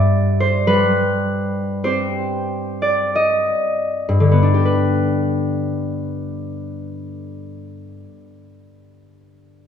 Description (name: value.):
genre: classical, solo harp piece.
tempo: 38-54 BPM.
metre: 4/4.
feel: rubato.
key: G major.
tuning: A4 = 440 Hz.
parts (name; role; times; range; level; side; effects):
concert harp; solo; 0.0-8.6 s; G2 to G5; -17 LUFS; left 1 dB; none.
room: wet recital hall reverb, RT60 1.6 s.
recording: recorded in a church or concert hall.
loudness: -16 LUFS.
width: side -8 dB against mid.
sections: 0.0-4.6 A section; 4.6-9.7 B section.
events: slowing down 0.0-4.6.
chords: 0.0 Cm/G; 4.6 G.